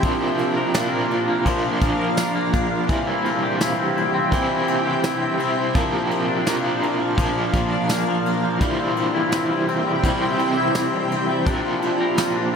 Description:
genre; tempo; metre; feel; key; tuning
dream pop; 84 BPM; 4/4; straight; unclear; A4 = 439 Hz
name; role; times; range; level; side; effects
overdriven semi-hollow guitar; accompaniment; 0.0-12.6 s; Bb2 to C5; -23 LUFS; right 2 dB; tremolo, lush chorus
shimmering ambient pad; sustained chords; 0.0-12.6 s; Bb2 to G5; -24 LUFS; equal; chorus, built-in reverb
twangy electric guitar; arpeggios; 0.0-12.6 s; E3 to Bb4; -24 LUFS; left 4 dB; wide subtle chorus, ping-pong delay
soft brush drum kit; drums; 0.0-12.3 s; kick drum, ride cymbal, snare drum, tambourine; -27 LUFS; equal; none
room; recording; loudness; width
moderate shimmer reverb, RT60 6.0 s; none; -18 LUFS; side -6 dB against mid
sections
0.0-12.6 A section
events
none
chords
0.0 Bb; 2.9 C; 5.8 Bb; 8.6 C; 11.5 Bb

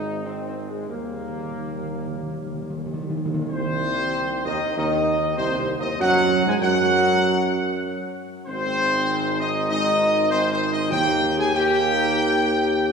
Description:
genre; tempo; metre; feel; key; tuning
classical, ceremonial fanfare; 97 BPM; 4/4; straight; Ab major; A4 = 440 Hz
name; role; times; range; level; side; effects
warm trumpet section; melody; 0.0-12.9 s; Ab3 to Ab5; -23 LUFS; equal; none
mellow French horn section; sustained chords; 0.0-12.9 s; Ab3 to Ab4; -27 LUFS; left 2 dB; none
warm trombone section; sustained chords; 0.0-12.9 s; C3 to Bb3; -28 LUFS; right 2 dB; none
clear tuba; bass; 0.0-12.9 s; Ab1 to Ab2; -27 LUFS; right 3 dB; none
timpani; percussion; 0.9-3.5, 10.9-11.8 s; Eb3; -30 LUFS; right 1 dB; none
room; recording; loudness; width
wet church reverb, RT60 2.9 s; recorded in a church or concert hall; -20 LUFS; side -5 dB against mid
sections
0.0-3.5 A section; 3.5-12.9 A section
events
timpani fill 0.9-3.5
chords
0.0 Ab; 0.9 Eb; 3.5 Cm; 6.0 Gbsus2; 8.5 Ab; 10.9 Eb

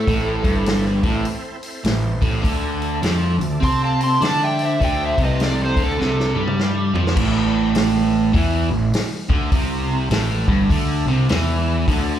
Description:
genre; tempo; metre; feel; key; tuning
blues rock power trio and southern rock; 102 BPM; 4/4; swing 62% on 8ths; A minor; A4 = 440 Hz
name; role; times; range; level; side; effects
overdriven slide guitar; melody; 0.0-6.4 s; A4 to C6; -22 LUFS; equal; slapback echo
biting lead guitar; second line; 0.0-6.4 s; D4 to A5; -30 LUFS; right 1 dB; overdrive, slapback echo
overdriven tonewheel organ; sustained chords; 0.0-7.1, 11.9-12.2 s; A3 to E5; -34 LUFS; right 3 dB; none
distorted electric guitar; riff; 0.0-12.2 s; G2 to D4; -21 LUFS; right 1 dB; distortion, slapback echo
fuzz picked electric bass; bass; 0.0-12.2 s; G1 to D3; -22 LUFS; equal; overdrive
vintage drum kit; drums; 0.1-12.1 s; crash cymbal, hi-hat, kick drum, snare drum, toms; -23 LUFS; equal; none
room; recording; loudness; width
light reverb; live gig heard through the venue's PA, club reverb; -17 LUFS; side -10 dB against mid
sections
0.0-7.2 A section; 7.2-12.2 B section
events
drum fill 6.0-7.2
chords
0.0 Am; 2.4 D5; 7.2 Am

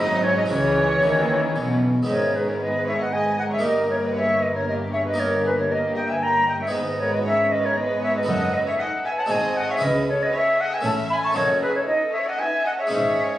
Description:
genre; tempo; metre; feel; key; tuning
classical, baroque-style concerto movement with solo episodes; 116 BPM; 3/4; straight; G# minor; A4 = 441 Hz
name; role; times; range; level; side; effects
bright concert flute; melody; 0.0-13.2 s; B4 to C#6; -22 LUFS; equal; none
rich chamber violin section; melody; 0.0-13.4 s; D#4 to E5; -34 LUFS; left 3 dB; none
rich studio violin section; second line; 0.0-13.4 s; C#4 to A5; -29 LUFS; left 1 dB; none
harpsichord; accompaniment; 0.0-13.4 s; F#2 to F#4; -28 LUFS; equal; none
warm symphonic viola section; accompaniment; 0.0-12.8 s; E3 to D#4; -30 LUFS; equal; none
warm chamber cello section; bass; 0.0-13.3 s; F#2 to D#3; -29 LUFS; right 1 dB; none
warm chamber double bass section; bass; 0.0-13.3 s; F#1 to D#2; -31 LUFS; right 1 dB; none
room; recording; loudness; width
moderate recital hall reverb, RT60 1.6 s; recorded on a phone in the room, club reverb; -19 LUFS; side -14 dB against mid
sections
0.0-2.1 A section; 2.1-13.4 B section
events
none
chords
0.0 G#7; 0.5 C#m; 2.1 G#m; 3.6 D#/G; 6.7 G#m; 8.3 D#dim/F#; 9.3 G#7; 9.8 C#m; 10.8 A; 11.4 D#m7b5/F#

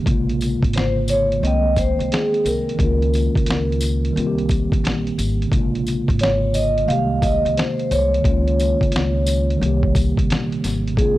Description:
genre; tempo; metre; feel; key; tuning
lo-fi hip hop; 88 BPM; 4/4; swing 66% on 16ths; unclear; A4 = 440 Hz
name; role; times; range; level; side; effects
mellow tine electric piano; accompaniment; 0.0-11.2 s; C3 to G5; -23 LUFS; equal; medium stereo tremolo, cassette tape
upright bass; bass; 0.1-11.2 s; Ab1 to Db2; -22 LUFS; equal; tube saturation
dusty soul sampler-style drum kit; drums; 0.1-11.2 s; hi-hat, kick drum, snare drum; -21 LUFS; equal; overdrive
tambourine; percussion; 0.4-10.8 s; none; -33 LUFS; left 2 dB; none
vibraphone with soft mallets; melody; 0.8-11.2 s; Ab4 to F5; -21 LUFS; equal; none
room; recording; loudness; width
small room ambience; dry, gritty hardware recording, cassette tape; -17 LUFS; side -16 dB against mid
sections
0.0-11.2 A section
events
none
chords
0.1 Bbm7; 1.4 Abmaj7/C; 2.8 Db6; 4.2 Cm7; 5.5 Bbm7; 6.9 Abmaj7/C; 8.2 Db6; 9.6 Cm7

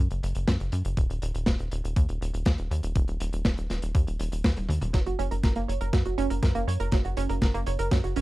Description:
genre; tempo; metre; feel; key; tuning
italo disco; 121 BPM; 4/4; straight; F# major; A4 = 439 Hz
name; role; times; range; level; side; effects
tight sequencer bass; bass; 0.0-8.2 s; D#1 to F#2; -28 LUFS; equal; none
crunchy breakbeat drum kit; drums; 0.1-8.2 s; hi-hat, snare drum, toms; -31 LUFS; equal; none
electronic kick drum; drums; 0.5-8.0 s; none; -25 LUFS; equal; none
analog pluck; arpeggios; 4.9-8.2 s; F#3 to C#5; -30 LUFS; right 7 dB; chorus, tape echo
room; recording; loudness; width
little or no reverb; dry, close 1970s-style studio recording; -24 LUFS; side -18 dB against mid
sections
0.0-4.9 A section; 4.9-8.2 B section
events
drum fill 4.4-4.9, 4.9-8.2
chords
0.0 N.C.; 4.9 F#

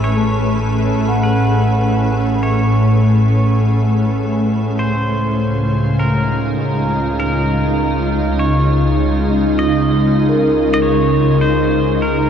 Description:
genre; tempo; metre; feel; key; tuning
ambient; 50 BPM; 4/4; straight; unclear; A4 = 436 Hz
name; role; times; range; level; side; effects
pedal steel guitar; melody; 0.0-12.3 s; Bb4 to Eb5; -24 LUFS; equal; shimmer reverb, diffuse ambient delay
soft additive organ-like pad; sustained chords; 0.0-12.3 s; A2 to Cb5; -15 LUFS; equal; ensemble chorus, built-in reverb
bright studio double bass section; bass; 0.0-12.3 s; A1 to Db2; -22 LUFS; equal; none
vibraphone with medium mallets; arpeggios; 0.2-12.3 s; A3 to Gb5; -22 LUFS; left 3 dB; shimmer reverb, diffuse ambient delay
room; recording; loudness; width
wet cathedral reverb, RT60 6.7 s; dark, warm production; -13 LUFS; side -8 dB against mid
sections
0.0-12.3 A section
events
fade-in on double bass section 0.0-12.3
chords
0.0 Amaj7; 4.8 Dbmaj7

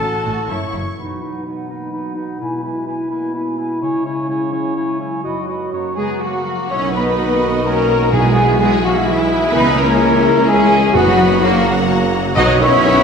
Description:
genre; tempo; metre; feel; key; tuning
cinematic, heroic adventure film score; 127 BPM; 3/4; straight; B major; A4 = 439 Hz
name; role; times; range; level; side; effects
rich symphonic violin section; melody; 0.0-1.0, 6.0-13.0 s; E4 to C#6; -23 LUFS; left 4 dB; none
clear symphonic violin section; second line; 0.0-0.8, 6.7-13.0 s; A3 to B5; -26 LUFS; left 2 dB; none
rich symphonic viola section; accompaniment; 0.0-0.7, 6.7-13.0 s; D#3 to F#4; -23 LUFS; right 1 dB; none
dark French horn section; sustained chords; 0.0-13.0 s; F#3 to D#5; -21 LUFS; left 3 dB; none
concert harp; arpeggios; 0.0-13.0 s; F#2 to G#5; -27 LUFS; left 5 dB; none
dark trumpet section; stabs; 0.0-1.0, 6.0-13.0 s; G#3 to C#5; -23 LUFS; right 2 dB; none
clear symphonic double bass section; bass; 0.0-0.8, 6.7-12.9 s; F#1 to C#2; -24 LUFS; right 3 dB; none
rich symphonic cello section; bass; 0.0-0.8, 6.0-13.0 s; F#2 to D#4; -21 LUFS; right 1 dB; none
timpani; percussion; 0.0-0.2, 8.1-13.0 s; F#2 to B2; -22 LUFS; equal; none
clear clarinet; second line; 1.0-6.7 s; D#4 to F#4; -23 LUFS; equal; none
mellow cor anglais; second line; 1.0-13.0 s; E4 to D#5; -25 LUFS; right 2 dB; none
mellow hollow flute section; second line; 1.0-13.0 s; E5 to D#6; -24 LUFS; equal; none
mellow trombone section; sustained chords; 1.0-13.0 s; B2 to E4; -25 LUFS; right 2 dB; none
mellow tuba; bass; 6.7-12.9 s; F#1 to C#2-23c; -22 LUFS; right 3 dB; none
room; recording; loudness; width
wet scoring stage reverb, RT60 1.5 s; heard from further back in the room; -13 LUFS; side -6 dB against mid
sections
1.0-6.7 A section; 6.7-13.0 B section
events
none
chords
0.0 A; 0.5 F#7; 1.0 B; 2.4 E/B; 3.8 C#m; 5.2 B/F#; 5.7 F#; 6.7 B; 8.1 E/B; 9.5 C#m; 11.0 B/F#; 11.4 F#; 12.4 B

